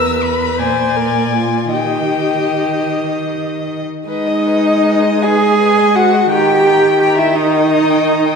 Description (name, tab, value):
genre	classical, slow romantic movement for string quartet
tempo	50-58 BPM (dotted quarters)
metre	6/8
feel	rubato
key	G# minor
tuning	A4 = 440 Hz
part	rich violin	melody	0.0-8.4 s	B4 to E6	-21 LUFS	left 8 dB	none
part	rich violin	second line	0.0-8.4 s	B4 to G#5	-18 LUFS	left 4 dB	none
part	warm viola	accompaniment	0.0-8.4 s	D#3 to B#4	-18 LUFS	equal	none
part	rich cello	bass	0.0-8.4 s	E2 to G#4	-15 LUFS	right 3 dB	none
room	wet scoring stage reverb, RT60 1.9 s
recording	heard from further back in the room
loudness	-12 LUFS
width	side -5 dB against mid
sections	0.0-4.1 A section; 4.1-8.4 B section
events	none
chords	0.0 E5; 0.6 A#7; 1.7 D#; 4.1 G#m; 6.3 D#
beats	0.59 | 1.73 2.92 | 4.08 5.24 | 6.30 7.35